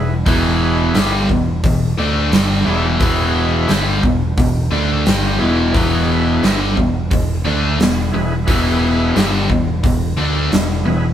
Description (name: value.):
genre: blues rock power trio and southern rock.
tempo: 88 BPM.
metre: 4/4.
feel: straight.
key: unclear.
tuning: A4 = 440 Hz.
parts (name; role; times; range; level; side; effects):
tonewheel organ; sustained chords; 0.0-11.1 s; E4 to D5; -24 LUFS; right 1 dB; slow rotary speaker, overdrive.
biting overdriven guitar; riff; 0.0-11.1 s; E2 to D4; -17 LUFS; left 1 dB; none.
modern bright picked electric bass; bass; 0.0-11.1 s; E1 to D2; -20 LUFS; equal; none.
huge arena drum kit; drums; 0.3-10.7 s; hi-hat, kick drum, snare drum; -19 LUFS; equal; none.
room: light reverb.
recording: band playing live in one room.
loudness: -13 LUFS.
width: side -10 dB against mid.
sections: 0.0-11.1 A section.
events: none.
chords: 0.0 E.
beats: | 0.26 0.94 1.63 2.31 | 3.00 3.69 4.37 5.05 | 5.74 6.42 7.11 7.79 | 8.47 9.15 9.84 10.52.